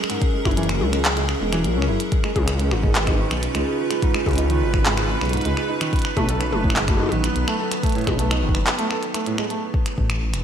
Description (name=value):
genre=IDM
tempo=126 BPM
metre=4/4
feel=straight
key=unclear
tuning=A4 = 441 Hz
part: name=icy glass pad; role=sustained chords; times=0.0-9.6 s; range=C#3 to A#4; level=-27 LUFS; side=right 1 dB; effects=chorus, built-in reverb
part: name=felt-muted upright piano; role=arpeggios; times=0.0-9.6 s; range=G#2 to A4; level=-26 LUFS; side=right 2 dB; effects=ping-pong delay
part: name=glitchy drum kit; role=drums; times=0.0-10.4 s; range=finger snaps, handclaps, hi-hat, toms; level=-25 LUFS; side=left 1 dB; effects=studio ambience
part: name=electronic kick drum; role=drums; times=0.2-10.1 s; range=none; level=-22 LUFS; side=equal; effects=studio ambience
part: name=dark detuned saw bass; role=bass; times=0.5-10.4 s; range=E1 to C#2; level=-23 LUFS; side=equal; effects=none
part: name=bubbling stepped-filter texture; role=texture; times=3.0-9.6 s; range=B4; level=-31 LUFS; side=right 2 dB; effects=chorus, built-in reverb
room=moderate lush hall reverb, RT60 1.7 s, digital ambience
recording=big arena sound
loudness=-19 LUFS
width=side -8 dB against mid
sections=0.0-9.6 A section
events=break 8.7-9.6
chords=0.0 F#add9; 2.0 C#add9; 5.8 B; 9.6 A5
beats=| 0.10 0.57 1.05 1.52 | 2.00 2.48 2.95 3.43 | 3.90 4.38 4.86 5.33 | 5.81 6.29 6.76 7.24 | 7.71 8.19 8.67 9.14 | 9.62 10.10